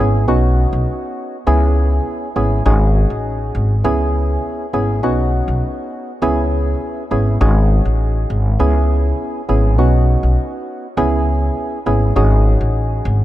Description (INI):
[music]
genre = dancehall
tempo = 101 BPM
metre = 4/4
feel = straight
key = C# minor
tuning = A4 = 440 Hz
[part]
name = percussive organ stab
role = accompaniment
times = 0.0-13.2 s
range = B3 to G#4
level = -19 LUFS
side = right 1 dB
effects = chorus
[part]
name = upright bass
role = bass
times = 0.0-13.2 s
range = G#1 to C#2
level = -15 LUFS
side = equal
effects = none
[sound]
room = light reverb, small room ambience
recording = none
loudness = -14 LUFS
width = side -14 dB against mid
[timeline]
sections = 0.0-1.5 A section; 1.5-13.2 B section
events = none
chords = 0.3 Badd9; 1.5 C#m7; 2.7 G#7sus4; 3.8 C#m7; 5.0 Badd9; 6.2 C#m7; 7.4 G#7sus4; 8.6 C#m7; 9.8 Badd9; 11.0 C#m7; 12.2 G#7sus4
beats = 0.28 0.87 | 1.47 2.06 2.66 3.25 | 3.84 4.44 5.03 5.63 | 6.22 6.82 7.41 8.00 | 8.60 9.19 9.79 10.38 | 10.97 11.57 12.16 12.76